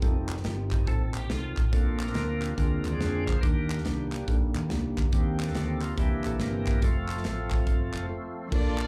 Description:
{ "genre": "uptempo gospel", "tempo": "141 BPM", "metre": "4/4", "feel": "swing 64% on 8ths", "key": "unclear", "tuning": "A4 = 440 Hz", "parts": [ { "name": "mellow tine electric piano", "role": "accompaniment", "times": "0.0-8.9 s", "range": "Bb2 to C5", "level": "-36 LUFS", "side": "equal", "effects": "plate reverb, slapback echo" }, { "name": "bright tonewheel organ", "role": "sustained chords", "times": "0.0-8.5 s", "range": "Eb3 to D5", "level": "-36 LUFS", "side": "equal", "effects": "slow rotary speaker, plate reverb" }, { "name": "mellow French horn section", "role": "sustained chords", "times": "0.0-8.5 s", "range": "Eb3 to F4", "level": "-46 LUFS", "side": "equal", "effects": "none" }, { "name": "fingered electric bass", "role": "bass", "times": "0.0-8.9 s", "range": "F1 to F2", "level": "-33 LUFS", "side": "equal", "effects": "none" }, { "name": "modern studio drum kit", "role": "drums", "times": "0.0-8.9 s", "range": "crash cymbal, hi-hat, kick drum, ride cymbal, snare drum", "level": "-31 LUFS", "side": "equal", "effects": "none" }, { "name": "group handclap", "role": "percussion", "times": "0.3-8.9 s", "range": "none", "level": "-43 LUFS", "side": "equal", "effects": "slapback echo" }, { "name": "semi-hollow electric guitar", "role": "second line", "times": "0.9-1.7 s", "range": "F4 to A4", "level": "-42 LUFS", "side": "equal", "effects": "ensemble chorus, plate reverb, slapback echo" }, { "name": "warm studio string section", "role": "melody", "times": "8.5-8.9 s", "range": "F4 to D5", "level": "-36 LUFS", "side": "equal", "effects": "none" } ], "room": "light reverb", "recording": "live gig heard through the venue's PA, club reverb", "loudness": "-28 LUFS", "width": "mono", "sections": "0.0-8.5 A section", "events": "tonewheel organ solo 0.0-8.5; break 8.1-8.5", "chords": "0.0 F7; 1.7 Bbmaj7; 2.6 Bb7/D; 3.4 Ebmaj7; 5.1 Cm7/Eb; 6.0 C7; 6.8 F" }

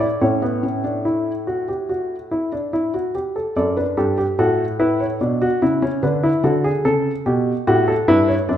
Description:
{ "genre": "classical, baroque-style 3-part fugue for grand piano", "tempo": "73 BPM", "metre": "4/4", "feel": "straight", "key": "unclear", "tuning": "A4 = 437 Hz", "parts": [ { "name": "warm baby grand piano", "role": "solo", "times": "0.0-8.6 s", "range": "F#2 to D5", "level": "-17 LUFS", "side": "equal", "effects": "none" } ], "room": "moderate recital hall reverb, RT60 1.5 s", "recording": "minimal, uncompressed stereo recording", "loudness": "-17 LUFS", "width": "side -10 dB against mid", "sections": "0.0-3.6 A section; 3.6-8.6 B section", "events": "none", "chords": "0.2 A; 3.6 D/F#; 5.2 E7/B; 6.8 A7" }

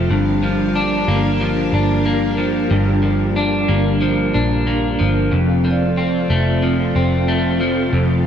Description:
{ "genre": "dream pop", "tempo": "92 BPM", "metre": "4/4", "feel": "straight", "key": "unclear", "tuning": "A4 = 440 Hz", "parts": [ { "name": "string machine, cellos", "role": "sustained chords", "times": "0.0-8.3 s", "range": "C4 to F5", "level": "-22 LUFS", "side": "right 2 dB", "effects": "ensemble chorus" }, { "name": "electric guitar at the edge of break-up", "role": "arpeggios", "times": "0.0-8.3 s", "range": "F2 to D4", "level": "-18 LUFS", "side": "left 2 dB", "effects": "lush chorus, analog delay" }, { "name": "vintage muted picked electric bass", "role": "bass", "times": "0.0-8.3 s", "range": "F1 to Bb1", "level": "-20 LUFS", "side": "right 1 dB", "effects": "none" }, { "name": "vibraphone with medium hard mallets", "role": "texture", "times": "5.7-7.9 s", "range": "D5", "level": "-30 LUFS", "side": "left 1 dB", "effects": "stereo widening, analog delay" } ], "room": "light reverb, digital ambience", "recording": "dry, gritty hardware recording", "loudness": "-15 LUFS", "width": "side -8 dB against mid", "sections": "0.0-8.3 A section", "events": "none", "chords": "0.1 Gm7; 5.3 F" }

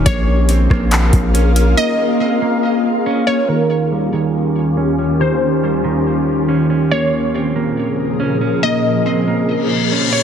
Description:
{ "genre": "hip hop, atmospheric cloud-rap", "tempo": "140 BPM", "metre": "4/4", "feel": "half-time", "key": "Bb dorian", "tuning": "A4 = 442 Hz", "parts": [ { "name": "ethereal airy pad", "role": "sustained chords", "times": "0.0-10.2 s", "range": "Eb2 to F5", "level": "-18 LUFS", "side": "left 2 dB", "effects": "ensemble chorus, built-in reverb, sidechain pumping, low-pass filter" }, { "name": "mellow electric guitar", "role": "arpeggios", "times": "0.0-10.2 s", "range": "Eb3 to Db4", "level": "-19 LUFS", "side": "right 4 dB", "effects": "low-pass filter, tape echo" }, { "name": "long sustained 808-style bass", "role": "bass", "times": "0.0-1.7 s", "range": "Bb1", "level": "-13 LUFS", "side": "equal", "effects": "none" }, { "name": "glassy wavetable pluck", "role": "melody", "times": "0.1-10.2 s", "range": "Bb4 to Eb5", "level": "-21 LUFS", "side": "left 1 dB", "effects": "chorus, low-pass filter, tape echo" }, { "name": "booming analog drum machine", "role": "drums", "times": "0.1-1.7 s", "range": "handclaps, hi-hat, kick drum, rim click", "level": "-17 LUFS", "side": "equal", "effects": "none" }, { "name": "reverse cymbal", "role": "sound effects", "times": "9.6-10.2 s", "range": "none", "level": "-17 LUFS", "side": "left 8 dB", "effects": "none" } ], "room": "light reverb", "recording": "heavily compressed radio sound", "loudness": "-13 LUFS", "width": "side -8 dB against mid", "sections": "0.0-3.5 A section; 3.5-10.2 B section", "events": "break 1.8-3.5; filter sweep 3.5-10.2; reverse cymbal 9.6-10.2", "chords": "0.1 Bbm9; 3.5 Eb9; 6.9 Bbm9" }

